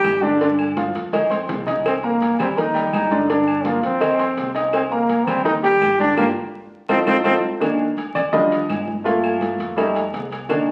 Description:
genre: latin, salsa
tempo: 166 BPM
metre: 4/4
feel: straight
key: unclear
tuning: A4 = 442 Hz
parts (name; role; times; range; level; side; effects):
- clear trombone; melody; 0.0-7.3 s; Bb3 to G4; -21 LUFS; equal; none
- bright upright piano; accompaniment; 0.0-10.7 s; D3 to Eb6; -24 LUFS; equal; none
- upright bass; bass; 0.0-10.7 s; G1 to G2; -37 LUFS; equal; none
- claves; percussion; 0.0-10.7 s; none; -39 LUFS; equal; none
- congas; percussion; 0.0-10.7 s; none; -32 LUFS; equal; none
- cowbell; percussion; 0.0-10.7 s; none; -30 LUFS; equal; none
- timbales and agogo bells; percussion; 0.0-10.7 s; none; -33 LUFS; equal; none
room: wet large studio reverb, RT60 1.0 s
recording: very old 78 rpm record, vinyl crackle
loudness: -20 LUFS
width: mono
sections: 0.0-7.6 A section; 7.6-10.7 B section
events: drum fill 1.1-1.9, 6.5-7.6; band accent 6.2-7.6; upright piano solo 7.6-10.7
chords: 0.4 G5; 1.1 F5; 1.9 Cm7; 2.6 Ebmaj7; 3.3 G5; 4.0 F5; 4.7 Cm7; 5.5 Ebmaj7; 6.2 Gm7; 6.9 F7; 7.6 Bbadd11/Eb; 8.3 Ebmaj7; 9.1 Gm7; 9.8 F7

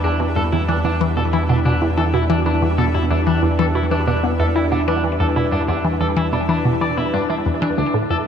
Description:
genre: ambient, sequencer-driven space music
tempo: 93 BPM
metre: 4/4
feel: straight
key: unclear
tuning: A4 = 440 Hz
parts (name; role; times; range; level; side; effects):
- sweeping resonant pad; sustained chords; 0.0-8.3 s; F3 to B4; -24 LUFS; right 1 dB; chorus, phaser
- clean electric guitar; arpeggios; 0.0-8.2 s; D4 to D5; -24 LUFS; moving between left 5 dB and right 1 dB; auto-pan, tape echo
- resonant blip pluck; riff; 0.0-8.2 s; D2 to E3; -20 LUFS; equal; phaser, tape echo
- round analog bass; bass; 0.0-8.3 s; D2 to E2; -22 LUFS; equal; none
- bubbling stepped-filter texture; texture; 0.0-8.3 s; E5; -36 LUFS; right 2 dB; chorus, built-in reverb
room: moderate huge ambient reverb, RT60 7.4 s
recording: none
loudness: -16 LUFS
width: side -8 dB against mid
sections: 0.0-8.3 A section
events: none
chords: 0.0 Em7

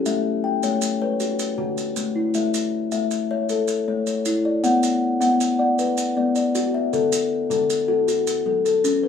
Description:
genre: southern african traditional, mbira-style interlocking cycle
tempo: 105 BPM (dotted quarters)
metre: 12/8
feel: straight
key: A mixolydian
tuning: A4 = 441 Hz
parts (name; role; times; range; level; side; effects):
- kalimba; arpeggios; 0.0-9.1 s; D3 to G5; -19 LUFS; left 3 dB; none
- maracas; percussion; 0.1-9.0 s; none; -31 LUFS; right 3 dB; none
room: wet small room reverb, RT60 0.5 s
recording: heard from further back in the room, studio ambience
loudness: -19 LUFS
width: side -7 dB against mid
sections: 0.0-2.3 A section; 2.3-9.1 B section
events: none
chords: 0.1 A; 1.2 D; 2.3 A; 4.6 Bm; 6.9 D; 8.1 F#m

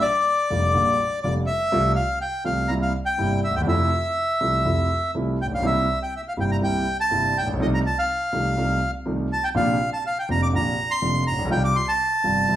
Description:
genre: tango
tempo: 123 BPM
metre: 4/4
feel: rubato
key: F major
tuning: A4 = 440 Hz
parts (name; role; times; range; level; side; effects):
- bandoneon; melody; 0.0-12.6 s; D5 to D6; -22 LUFS; equal; none
- warm concert grand piano; accompaniment; 0.5-12.6 s; F1 to F4; -23 LUFS; equal; none
room: moderate large studio reverb, RT60 0.9 s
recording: band playing live in one room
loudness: -20 LUFS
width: side -12 dB against mid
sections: 0.0-12.6 A section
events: none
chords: 0.0 Bb6; 1.7 F/C; 2.7 C7; 3.7 Fmaj7; 5.6 C7; 7.6 F7/C; 9.6 Bbadd9; 11.5 Csus4

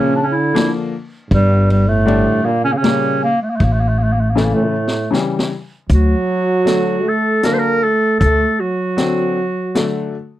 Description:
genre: klezmer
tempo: 78 BPM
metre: 3/4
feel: straight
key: A phrygian dominant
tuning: A4 = 438 Hz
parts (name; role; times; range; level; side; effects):
- warm clarinet; melody; 0.0-10.1 s; G3 to C5; -17 LUFS; equal; none
- breathy trombone; second line; 0.0-10.1 s; G2 to Bb3; -19 LUFS; right 3 dB; none
- clear upright piano; accompaniment; 0.0-10.1 s; Bb2 to A4; -20 LUFS; left 4 dB; none
- street-band drum kit; drums; 0.6-9.9 s; hi-hat, kick drum, ride cymbal, snare drum; -19 LUFS; equal; none
- upright bass; bass; 1.3-8.4 s; G1 to D2; -15 LUFS; equal; none
room: light reverb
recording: dry, close 1970s-style studio recording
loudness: -14 LUFS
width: side -14 dB against mid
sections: 0.0-5.9 A section; 5.9-10.4 B section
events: drum fill 4.4-5.9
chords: 0.0 Bb; 1.3 Gm; 3.6 A; 5.9 D

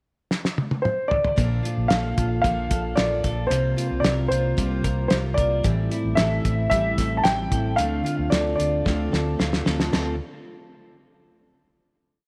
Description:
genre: jangly indie pop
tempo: 112 BPM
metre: 4/4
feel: straight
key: D minor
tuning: A4 = 440 Hz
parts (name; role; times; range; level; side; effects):
- cloth-damped thuddy drum kit; drums; 0.3-10.1 s; hi-hat, kick drum, snare drum, splash cymbal, toms; -27 LUFS; equal; none
- dark upright piano; melody; 0.8-9.3 s; C5 to A5; -27 LUFS; equal; tape echo
- picked steel-string acoustic guitar; accompaniment; 1.4-10.2 s; A2 to A4; -34 LUFS; equal; none
- twelve-string electric guitar; arpeggios; 1.4-10.2 s; A2 to Bb4; -30 LUFS; equal; none
- vintage muted fingered electric bass; bass; 1.4-10.2 s; A1 to D2; -30 LUFS; equal; none
room: light reverb, studio ambience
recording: none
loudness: -23 LUFS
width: mono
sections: 0.0-1.4 pickup bar; 1.4-9.9 verse; 9.9-12.1 final chord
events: drum fill 0.3-1.4, 8.9-9.9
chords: 0.0 N.C.; 1.4 Bbmaj7; 3.5 C7sus4; 5.6 Am7; 7.8 Dm7

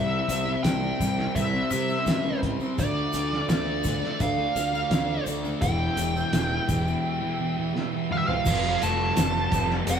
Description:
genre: psychedelic rock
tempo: 84 BPM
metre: 4/4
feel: straight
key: unclear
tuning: A4 = 439 Hz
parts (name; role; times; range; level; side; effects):
- fuzz lead guitar; melody; 0.0-10.0 s; D5 to A5; -28 LUFS; right 1 dB; wah, distortion
- tonewheel organ; sustained chords; 0.0-10.0 s; G3 to E5; -36 LUFS; right 4 dB; slow rotary speaker, overdrive
- thick fuzz guitar; riff; 0.0-10.0 s; E2 to G4; -29 LUFS; equal; distortion, phaser
- fuzz picked electric bass; bass; 0.0-10.0 s; E1 to C3; -30 LUFS; equal; overdrive
- cloth-damped thuddy drum kit; drums; 0.3-10.0 s; crash cymbal, hi-hat, kick drum, snare drum, toms; -28 LUFS; equal; none
- tube shaker; percussion; 0.3-10.0 s; none; -41 LUFS; left 6 dB; none
room: wet stone room reverb, RT60 0.9 s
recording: band playing live in one room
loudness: -23 LUFS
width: side -7 dB against mid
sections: 0.0-8.5 A section; 8.5-10.0 B section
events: drum fill 7.8-8.5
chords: 0.0 C; 2.8 Dm; 5.6 Em; 8.5 Fadd9

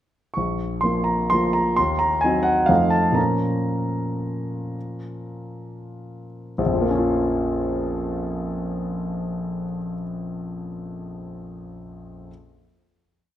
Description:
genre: classical, piano waltz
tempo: 90-136 BPM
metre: 3/4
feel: rubato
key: Bb minor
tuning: A4 = 440 Hz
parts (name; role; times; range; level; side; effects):
- warm grand piano; solo; 0.3-12.3 s; Bb1 to Db6; -22 LUFS; equal; none
room: light reverb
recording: none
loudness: -21 LUFS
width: side -12 dB against mid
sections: 0.4-6.6 A section; 6.6-10.2 final chord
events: slowing down 2.5-6.6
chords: 0.4 Bbm; 1.8 Cdim/Eb; 2.7 F7; 3.2 Bbm

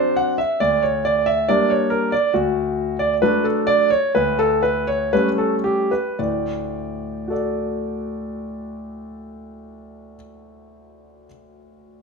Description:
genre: classical-period piano sonatina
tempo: 108-140 BPM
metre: 4/4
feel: straight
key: D major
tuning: A4 = 439 Hz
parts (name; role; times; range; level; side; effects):
- clear grand piano; solo; 0.0-12.0 s; D2 to F#5; -18 LUFS; equal; none
room: wet stone room reverb, RT60 1.1 s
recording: minimal, uncompressed stereo recording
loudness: -18 LUFS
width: side -4 dB against mid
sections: 0.0-6.2 A section; 6.2-10.5 B section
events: slowing down 1.5-6.2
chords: 0.0 D7; 0.6 Gm/D; 2.3 D; 4.1 A7/D; 6.2 D

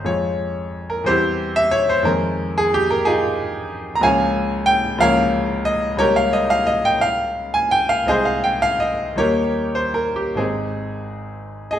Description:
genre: classical, romantic character piece for solo piano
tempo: 44-63 BPM (dotted quarters)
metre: 6/8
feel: rubato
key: Ab major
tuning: A4 = 440 Hz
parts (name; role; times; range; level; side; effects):
- clear grand piano; solo; 0.0-11.8 s; Ab1 to Bb5; -17 LUFS; equal; none
room: wet recital hall reverb, RT60 1.4 s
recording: none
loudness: -17 LUFS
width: side -10 dB against mid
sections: 0.0-11.8 A section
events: none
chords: 0.1 Fm; 1.1 C/E; 2.1 Fm7; 4.0 Bbm7/Db; 8.1 Ab/C; 9.2 Eb7; 10.4 Ab

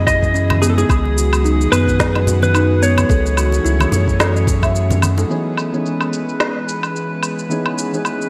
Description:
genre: organic downtempo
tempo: 109 BPM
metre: 4/4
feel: swing 56% on 16ths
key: C# minor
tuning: A4 = 440 Hz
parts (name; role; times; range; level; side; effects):
- clean lap steel guitar; melody; 0.0-5.0 s; G#4 to D#5; -22 LUFS; equal; subtle chorus, digital delay, shimmer reverb
- airy breathy pad; sustained chords; 0.0-8.3 s; C#3 to G#4; -27 LUFS; equal; chorus, sidechain pumping, shimmer reverb
- warm sub bass; bass; 0.0-5.3 s; C#2 to F#2; -19 LUFS; equal; sidechain pumping
- drifting glass-harmonics texture; texture; 0.0-8.3 s; G#4 to B4; -32 LUFS; equal; chorus, built-in reverb, shimmer reverb
- kalimba; arpeggios; 0.1-5.2 s; B3 to E5; -25 LUFS; equal; digital delay, shimmer reverb
- electronic kick drum; drums; 0.1-4.7 s; none; -21 LUFS; equal; overdrive, small room ambience
- electronic woodblock, shaker and snare drum; drums; 0.1-8.3 s; none; -24 LUFS; equal; overdrive, low-pass filter on perc, small room ambience, low-pass filter on snare, gated reverb
- congas and bongos; percussion; 0.1-5.3 s; none; -28 LUFS; equal; none
- felt-muted upright piano; accompaniment; 5.3-8.3 s; E3 to G#4; -26 LUFS; equal; sidechain pumping, digital delay, shimmer reverb
room: moderate lush hall reverb, RT60 1.8 s, digital ambience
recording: bright 1980s-style digital production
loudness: -16 LUFS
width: mono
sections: 0.0-5.3 A section; 5.3-8.3 B section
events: kick drops out 4.7-5.3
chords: 0.0 C#m7; 0.9 G#m7/C#; 3.1 F#m7/C#; 5.3 C#m7

